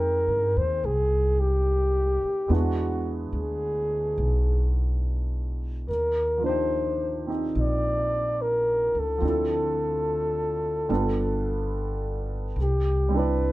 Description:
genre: jazz ballad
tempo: 72 BPM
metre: 4/4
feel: swing 67% on 8ths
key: unclear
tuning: A4 = 444 Hz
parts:
  - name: breathy flugelhorn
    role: melody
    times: 0.0-13.5 s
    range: F#4 to D5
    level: -26 LUFS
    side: left 1 dB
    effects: none
  - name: warm concert grand piano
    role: accompaniment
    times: 0.0-13.5 s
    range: F3 to G5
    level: -31 LUFS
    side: right 3 dB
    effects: none
  - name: upright bass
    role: bass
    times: 0.0-13.5 s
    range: G1 to G2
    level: -27 LUFS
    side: equal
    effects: none
room: moderate studio reverb, RT60 0.5 s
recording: band playing live in one room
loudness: -23 LUFS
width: side -17 dB against mid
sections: 0.0-13.5 A section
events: none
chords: 0.0 Fm11 (rootless); 2.5 E9; 5.9 Ebmaj7; 9.2 Dm7; 10.9 G9; 12.6 Cmaj9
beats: 0.00 0.83 1.66 | 2.50 3.33 4.18 5.03 | 5.88 6.72 7.56 8.40 | 9.23 10.06 10.90 11.73 | 12.56 13.40

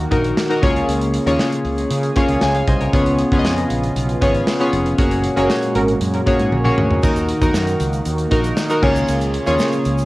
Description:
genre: 1980s-style pop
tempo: 117 BPM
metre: 4/4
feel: straight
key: Bb minor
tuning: A4 = 439 Hz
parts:
  - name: chorused retro synth keys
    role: accompaniment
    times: 0.0-10.1 s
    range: Bb3 to Ab5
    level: -18 LUFS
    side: left 1 dB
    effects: none
  - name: chorused pulse-width pad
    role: sustained chords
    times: 0.0-10.1 s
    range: Bb2 to Ab4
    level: -24 LUFS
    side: right 1 dB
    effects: none
  - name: fretless electric bass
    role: bass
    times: 0.0-10.1 s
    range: F1 to Db3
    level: -22 LUFS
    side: equal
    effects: none
  - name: modern studio drum kit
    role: drums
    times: 0.1-10.1 s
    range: crash cymbal, hi-hat, kick drum, snare drum, splash cymbal, tambourine, toms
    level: -21 LUFS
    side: equal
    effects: cassette tape
  - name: funky polysynth comp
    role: stabs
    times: 5.4-6.0 s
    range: Db4 to Bb4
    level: -23 LUFS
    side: right 2 dB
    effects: chorus, tape echo
  - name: tube shaker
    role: percussion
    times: 7.0-10.1 s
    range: none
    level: -42 LUFS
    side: right 5 dB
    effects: none
room: light reverb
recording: home recording on cassette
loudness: -15 LUFS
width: side -19 dB against mid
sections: 0.0-10.1 A section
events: synth keys fill 1.9-2.9; band accent 5.0-7.0; drum fill 6.5-7.0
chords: 0.0 Ebm; 0.6 Bbm7/Db; 2.9 Db7; 5.0 Gbadd9; 7.0 Ebm; 8.8 Bbm7/Db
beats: 0.37 | 0.88 1.40 1.91 2.42 | 2.94 3.45 3.96 4.47 | 4.99 5.50 6.01 6.52 | 7.04 7.55 8.06 8.58 | 9.09 9.60

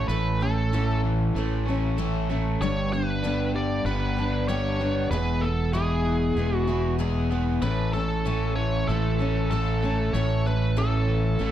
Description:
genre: folk rock and heartland rock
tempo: 96 BPM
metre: 4/4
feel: straight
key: A mixolydian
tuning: A4 = 440 Hz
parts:
  - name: biting lead guitar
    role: melody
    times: 0.0-11.5 s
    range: G#4 to D5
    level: -29 LUFS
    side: right 1 dB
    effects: overdrive, slapback echo, plate reverb
  - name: picked steel-string acoustic guitar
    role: accompaniment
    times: 0.0-11.5 s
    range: E2 to A4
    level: -30 LUFS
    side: left 3 dB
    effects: none
  - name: crunchy overdriven guitar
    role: riff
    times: 0.0-11.5 s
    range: E2 to A4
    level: -30 LUFS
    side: right 1 dB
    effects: none
  - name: fingered electric bass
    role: bass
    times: 0.0-11.5 s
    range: E1 to A1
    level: -26 LUFS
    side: equal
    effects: none
room: light reverb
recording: dark, warm production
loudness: -22 LUFS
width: side -11 dB against mid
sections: 0.0-11.5 A section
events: none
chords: 0.0 A; 2.6 G; 5.1 E; 7.6 A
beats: | 0.09 0.72 1.35 1.98 | 2.60 3.23 3.86 4.49 | 5.12 5.74 6.37 7.00 | 7.63 8.26 8.89 9.52 | 10.15 10.78 11.41

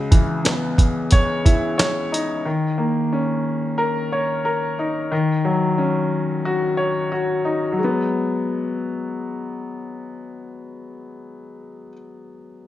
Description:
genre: hip hop, boom-bap hip-hop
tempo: 90 BPM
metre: 4/4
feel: swing 59% on 16ths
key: G# minor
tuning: A4 = 440 Hz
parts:
  - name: dark grand piano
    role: accompaniment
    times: 0.0-12.7 s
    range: C#2 to C#5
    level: -21 LUFS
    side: left 2 dB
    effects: cassette tape, high-pass filter, low-pass filter
  - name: dusty soul sampler-style drum kit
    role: drums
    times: 0.1-2.3 s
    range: hi-hat, kick drum, snare drum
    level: -15 LUFS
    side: right 1 dB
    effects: none
room: light reverb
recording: none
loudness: -19 LUFS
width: side -13 dB against mid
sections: 0.0-7.8 A section; 7.8-10.4 B section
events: none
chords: 0.0 C#m9; 2.4 A#madd11/D#; 5.1 D#m7; 7.8 G#m7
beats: 0.45 1.12 1.78 | 2.45 3.12 3.78 4.45 | 5.12 5.78 6.45 7.12 | 7.78 8.45 9.12 9.78

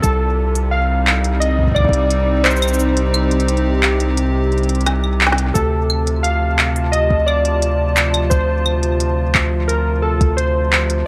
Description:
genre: IDM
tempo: 87 BPM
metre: 4/4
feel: straight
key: unclear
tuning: A4 = 440 Hz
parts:
  - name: warbly lo-fi synth keys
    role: melody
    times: 0.0-11.1 s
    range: A4 to F5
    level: -23 LUFS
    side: equal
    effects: chorus, delay, shimmer reverb
  - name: hollow soft pad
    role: sustained chords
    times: 0.0-11.1 s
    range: C3 to A5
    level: -24 LUFS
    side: equal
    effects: chorus, shimmer reverb
  - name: round analog bass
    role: bass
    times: 0.0-11.0 s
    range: C2 to D2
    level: -20 LUFS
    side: equal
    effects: none
  - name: electronic kick drum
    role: drums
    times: 0.0-10.3 s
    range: none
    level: -19 LUFS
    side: equal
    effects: none
  - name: organic electronic drum kit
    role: drums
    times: 0.0-11.0 s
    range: claves, handclaps, hi-hat, shaker, snare drum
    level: -21 LUFS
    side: equal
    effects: none
room: light reverb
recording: none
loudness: -17 LUFS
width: mono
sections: 0.0-11.1 A section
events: kick drops out 2.8-5.6; drum fill 4.9-5.6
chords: 0.0 Cmadd9; 5.6 Dm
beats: | 0.04 0.72 1.42 2.10 | 2.79 3.48 4.17 4.86 | 5.55 6.24 6.93 7.62 | 8.31 9.00 9.69 10.38 | 11.07

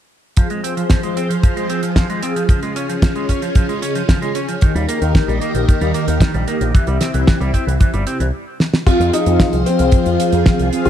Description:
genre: italo disco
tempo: 113 BPM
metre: 4/4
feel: straight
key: F minor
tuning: A4 = 440 Hz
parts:
  - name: phased string machine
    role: sustained chords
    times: 0.4-10.9 s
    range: Eb3 to C5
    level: -23 LUFS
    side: equal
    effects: ensemble chorus, phaser
  - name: electric guitar with an envelope filter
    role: arpeggios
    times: 0.4-8.3 s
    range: Eb3 to Db4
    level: -24 LUFS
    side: right 2 dB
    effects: low-pass filter, tape echo
  - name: mellow synth brass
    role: stabs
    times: 0.4-10.9 s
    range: C3 to Ab5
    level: -22 LUFS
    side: left 1 dB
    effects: chorus
  - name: damped 70s drum kit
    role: drums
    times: 0.4-10.9 s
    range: crash cymbal, hi-hat, snare drum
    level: -21 LUFS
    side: right 1 dB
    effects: studio reverb
  - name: kick drum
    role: drums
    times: 0.4-10.6 s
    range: none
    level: -13 LUFS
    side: equal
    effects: studio reverb
  - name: picked electric bass with an envelope filter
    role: bass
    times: 4.8-10.9 s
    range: G1 to F2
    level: -18 LUFS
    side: equal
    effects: tube saturation
  - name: warm concert grand piano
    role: melody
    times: 8.9-10.9 s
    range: C4 to F4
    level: -20 LUFS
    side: left 3 dB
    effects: tape echo
room: small room ambience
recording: dry, close 1970s-style studio recording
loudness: -14 LUFS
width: side -10 dB against mid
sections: 0.4-8.9 A section; 8.9-10.9 B section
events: stop 8.3-8.9; drum fill 8.6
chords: 0.4 Fm; 2.5 Db; 4.6 Eb; 6.7 C; 8.9 Fm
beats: | 0.37 0.90 1.43 1.97 | 2.50 3.03 3.56 4.09 | 4.62 5.15 5.68 6.21 | 6.74 7.28 7.80 8.34 | 8.87 9.40 9.93 10.46

